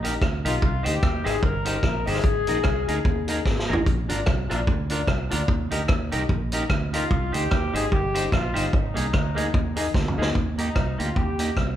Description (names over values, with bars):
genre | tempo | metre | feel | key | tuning
ska | 148 BPM | 4/4 | swing 57% on 8ths | Eb major | A4 = 439 Hz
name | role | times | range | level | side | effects
warm horn section | melody | 0.0-3.7, 6.9-11.6 s | Eb4 to Bb4 | -29 LUFS | left 3 dB | none
clean electric guitar | accompaniment | 0.0-11.5 s | Bb3 to C5 | -31 LUFS | right 2 dB | none
clear upright piano | stabs | 0.0-10.3 s | D4 to Eb5 | -32 LUFS | left 3 dB | none
fingered electric bass | bass | 0.0-11.8 s | G1 to Eb2 | -28 LUFS | right 1 dB | none
vintage drum kit | drums | 0.0-11.7 s | hi-hat, kick drum, rim click, snare drum, toms | -24 LUFS | equal | none
room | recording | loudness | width
moderate large studio reverb, RT60 1.1 s | band playing live in one room | -21 LUFS | side -11 dB against mid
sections
0.0-10.4 A section; 10.4-11.8 B section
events
drum fill 3.5-3.9, 9.9-10.4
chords
0.0 Eb; 0.6 Cm; 2.2 Absus2; 3.9 Bb; 5.5 Eb; 7.1 Cm; 8.7 Absus2; 10.4 Eb